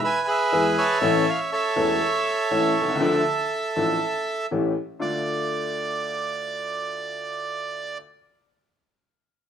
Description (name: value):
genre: tango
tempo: 121 BPM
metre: 4/4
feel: rubato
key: D minor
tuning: A4 = 441 Hz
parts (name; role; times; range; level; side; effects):
- bandoneon; melody; 0.0-8.0 s; G#4 to A5; -23 LUFS; right 3 dB; none
- clear upright piano; accompaniment; 0.5-8.0 s; E1 to A4; -25 LUFS; left 3 dB; none
room: light reverb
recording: minimal, uncompressed stereo recording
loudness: -22 LUFS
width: side -8 dB against mid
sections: 0.0-5.0 A section; 5.0-9.0 B section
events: none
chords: 0.0 E; 1.0 A; 3.0 Dm; 4.5 A7; 5.0 Dm